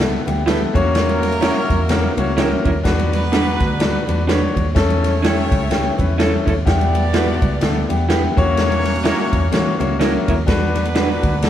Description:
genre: uptempo 1960s-style soul.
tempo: 126 BPM.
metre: 4/4.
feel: swing 59% on 8ths.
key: unclear.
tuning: A4 = 441 Hz.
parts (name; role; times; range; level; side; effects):
clear horn section; second line; 0.0-11.5 s; F#3 to D5; -26 LUFS; right 2 dB; none.
clear grand piano; accompaniment; 0.0-11.5 s; A#3 to C#5; -21 LUFS; left 4 dB; none.
vintage muted picked electric bass; bass; 0.0-11.5 s; C#2 to E3; -21 LUFS; equal; none.
swinging big-band drum kit; drums; 0.0-11.5 s; kick drum, ride cymbal, snare drum; -20 LUFS; equal; none.
congas; percussion; 0.3-11.5 s; none; -30 LUFS; right 2 dB; none.
electric guitar through a small old amp; stabs; 0.5-11.1 s; C#4 to B4; -23 LUFS; right 5 dB; none.
room: moderate stone room reverb, RT60 1.3 s.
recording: band playing live in one room.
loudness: -15 LUFS.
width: side -11 dB against mid.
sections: 0.0-11.5 A section.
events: none.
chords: 0.0 Em; 0.7 F#7/E; 2.9 Bm; 4.8 A; 6.7 Em; 8.3 F#7/E; 10.5 Bm.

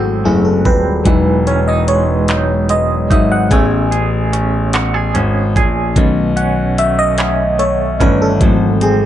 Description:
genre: slow six-eight R&B.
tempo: 49 BPM (dotted quarters).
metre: 6/8.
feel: straight.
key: E major.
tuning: A4 = 440 Hz.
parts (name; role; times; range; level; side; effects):
semi-hollow electric guitar; second line; 0.0-9.1 s; G#2 to G#4; -20 LUFS; right 6 dB; tremolo.
FM electric piano; accompaniment; 0.0-9.1 s; D#3 to G#5; -15 LUFS; left 1 dB; chorus.
clear grand piano; bass; 0.0-9.1 s; D#1 to B1; -16 LUFS; equal; none.
smooth R&B drum kit; drums; 0.7-9.0 s; handclaps, hi-hat, kick drum; -16 LUFS; right 1 dB; none.
room: digital ambience.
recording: dark, warm production, nothing above 10.8 kHz.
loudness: -11 LUFS.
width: side -11 dB against mid.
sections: 0.0-9.1 A section.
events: break 0.0-1.1; FM electric piano solo 0.0-9.1.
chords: 0.0 G#7b9b13; 1.1 Emaj9; 3.5 Amaj9; 6.0 B9; 8.4 G#7b9b13.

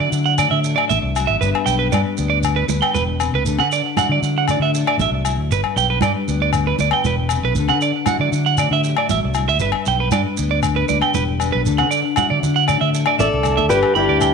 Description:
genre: highlife guitar band.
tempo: 117 BPM.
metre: 4/4.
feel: straight.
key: G major.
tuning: A4 = 438 Hz.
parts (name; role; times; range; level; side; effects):
mellow electric guitar; accompaniment; 0.0-14.3 s; G2 to B4; -25 LUFS; left 11 dB; none.
electric guitar at the edge of break-up; arpeggios; 0.0-14.3 s; B4 to B5; -20 LUFS; right 9 dB; tape echo.
fingered electric bass; bass; 0.0-14.3 s; E1 to D3; -21 LUFS; equal; none.
shekere; percussion; 0.1-14.3 s; none; -28 LUFS; right 5 dB; none.
agogo bells; percussion; 0.4-14.3 s; none; -24 LUFS; left 14 dB; none.
congas; percussion; 0.4-13.8 s; none; -28 LUFS; right 11 dB; none.
fingerpicked steel-string acoustic guitar; melody; 13.2-14.3 s; E4 to D5; -17 LUFS; left 3 dB; none.
warm trumpet; second line; 13.2-14.3 s; D4 to A4; -24 LUFS; right 7 dB; none.
room: moderate echo chamber reverb, RT60 1.6 s, studio ambience.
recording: 1960s-style stereo with parts hard left and right.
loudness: -15 LUFS.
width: side -5 dB against mid.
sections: 0.0-13.7 A section.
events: drum fill 13.3-13.7.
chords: 0.0 Dadd9; 1.4 G; 3.5 Dadd9; 5.5 G; 7.6 Dadd9; 9.6 G; 11.7 Dadd9; 13.7 G.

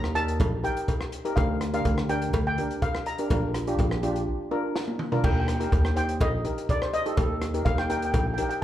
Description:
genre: calypso.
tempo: 124 BPM.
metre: 4/4.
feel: straight.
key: unclear.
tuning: A4 = 440 Hz.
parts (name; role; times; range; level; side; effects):
steel pan; melody; 0.0-8.6 s; C5 to Bb5; -30 LUFS; equal; slapback echo.
steel pan; accompaniment; 0.0-8.6 s; D4 to C5; -30 LUFS; left 1 dB; slapback echo.
upright bass; bass; 0.0-8.4 s; Bb1 to Eb2; -27 LUFS; equal; none.
compact cocktail drum kit; drums; 0.0-8.6 s; crash cymbal, hi-hat, kick drum, rim click, snare drum, toms; -29 LUFS; equal; none.
cowbell; percussion; 0.4-8.3 s; none; -35 LUFS; right 2 dB; slapback echo.
room: light reverb, studio ambience.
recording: live gig heard through the venue's PA, club reverb.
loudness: -24 LUFS.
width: side -12 dB against mid.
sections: 0.0-5.2 A section; 5.2-8.6 A section.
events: break 4.3-5.2; drum fill 4.8-5.2.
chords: 0.0 Eb; 1.4 Gm/D; 3.3 Bb; 5.2 Eb.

